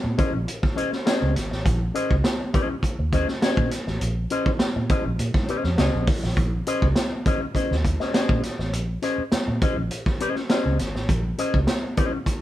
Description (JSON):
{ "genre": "funk", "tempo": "102 BPM", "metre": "4/4", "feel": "straight", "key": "Bb minor", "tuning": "A4 = 435 Hz", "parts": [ { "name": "electric guitar with an envelope filter", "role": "accompaniment", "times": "0.0-12.3 s", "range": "Db4 to Eb5", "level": "-27 LUFS", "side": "left 3 dB", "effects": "none" }, { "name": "vintage muted fingered electric bass", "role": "bass", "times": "0.0-12.3 s", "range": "Ab1 to Bb2", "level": "-26 LUFS", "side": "right 1 dB", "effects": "none" }, { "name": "vintage drum kit", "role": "drums", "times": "0.2-12.4 s", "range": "hi-hat, kick drum, snare drum", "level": "-23 LUFS", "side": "equal", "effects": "none" } ], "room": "light reverb", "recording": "band playing live in one room", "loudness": "-21 LUFS", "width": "side -14 dB against mid", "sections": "0.0-12.4 A section", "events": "none", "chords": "0.0 Bbm11" }